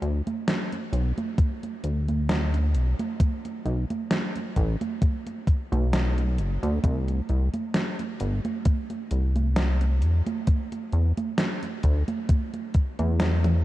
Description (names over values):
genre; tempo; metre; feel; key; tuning
vaporwave; 66 BPM; 4/4; swing 55% on 16ths; unclear; A4 = 443 Hz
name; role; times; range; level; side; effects
chorused synth bass; bass; 0.0-13.6 s; F#1 to E2; -23 LUFS; equal; none
gated 80s digital drum machine; drums; 0.0-13.6 s; congas, hi-hat, snare drum, toms; -29 LUFS; right 2 dB; gated reverb, gated reverb snare
electronic kick drum; drums; 1.4-12.9 s; none; -21 LUFS; equal; none
room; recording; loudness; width
light reverb; none; -23 LUFS; side -16 dB against mid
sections
0.0-13.6 A section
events
drum fill 13.2-13.6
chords
none